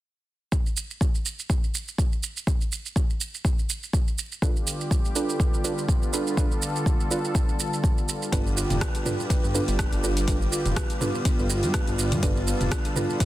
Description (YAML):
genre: afro house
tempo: 123 BPM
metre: 4/4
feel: swing 55% on 16ths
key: unclear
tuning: A4 = 440 Hz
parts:
  - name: deep house drum kit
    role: drums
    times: 0.5-13.2 s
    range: hi-hat, rim click, shaker, toms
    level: -31 LUFS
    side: right 2 dB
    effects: soft clipping on snare
  - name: electronic kick drum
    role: drums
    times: 0.5-13.2 s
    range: none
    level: -24 LUFS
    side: equal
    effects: none
  - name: warm analog pad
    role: sustained chords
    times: 4.4-13.2 s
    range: D3 to A4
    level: -31 LUFS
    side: left 1 dB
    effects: wide subtle chorus, sidechain pumping
  - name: deep mellow chord stab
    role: stabs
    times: 4.4-13.2 s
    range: D4 to B4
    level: -31 LUFS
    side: right 2 dB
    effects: chorus, sidechain pumping, dub echo
  - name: buzzing kalimba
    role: arpeggios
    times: 8.3-13.2 s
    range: B3 to B4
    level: -31 LUFS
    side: right 1 dB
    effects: sidechain pumping, dub echo
  - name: smooth synth bass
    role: bass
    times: 8.3-12.7 s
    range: F1 to G2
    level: -27 LUFS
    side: equal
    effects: sidechain pumping
room: light reverb, digital ambience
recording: dense, heavily limited modern master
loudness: -23 LUFS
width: side -15 dB against mid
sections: 0.5-8.3 A section; 8.3-13.2 B section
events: none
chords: 0.5 G7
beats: | 0.52 1.01 1.50 1.99 | 2.47 2.96 3.45 3.94 | 4.42 4.91 5.40 5.89 | 6.38 6.86 7.35 7.84 | 8.33 8.81 9.30 9.79 | 10.28 10.77 11.25 11.74 | 12.23 12.72 13.20